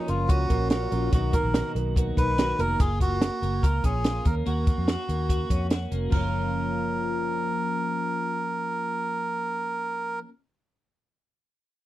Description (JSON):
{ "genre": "jangly indie pop", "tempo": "144 BPM", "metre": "4/4", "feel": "straight", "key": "F# major", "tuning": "A4 = 441 Hz", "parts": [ { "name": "melodica", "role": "melody", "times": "0.0-10.2 s", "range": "E#4 to B4", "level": "-29 LUFS", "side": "right 1 dB", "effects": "slapback echo" }, { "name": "fingerpicked twelve-string acoustic guitar", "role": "accompaniment", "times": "0.0-2.8 s", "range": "B2 to A#4", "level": "-33 LUFS", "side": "right 7 dB", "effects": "none" }, { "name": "twelve-string electric guitar", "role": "arpeggios", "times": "0.0-10.3 s", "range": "D#3 to F#4", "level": "-32 LUFS", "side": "left 2 dB", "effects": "lush chorus" }, { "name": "vintage muted fingered electric bass", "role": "bass", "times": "0.1-10.2 s", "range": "E#1 to E#2", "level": "-28 LUFS", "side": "equal", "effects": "none" }, { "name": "compact cocktail drum kit", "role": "drums", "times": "0.1-6.2 s", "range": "crash cymbal, hi-hat, kick drum, snare drum", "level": "-24 LUFS", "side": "equal", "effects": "none" } ], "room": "little or no reverb", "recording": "dry, close 1970s-style studio recording", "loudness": "-23 LUFS", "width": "side -14 dB against mid", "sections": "0.0-6.1 A section; 6.1-9.5 B section", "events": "none", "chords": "0.0 F#maj7; 1.1 Bmaj7; 2.8 F#maj7; 4.3 D#m7; 6.1 F#maj7" }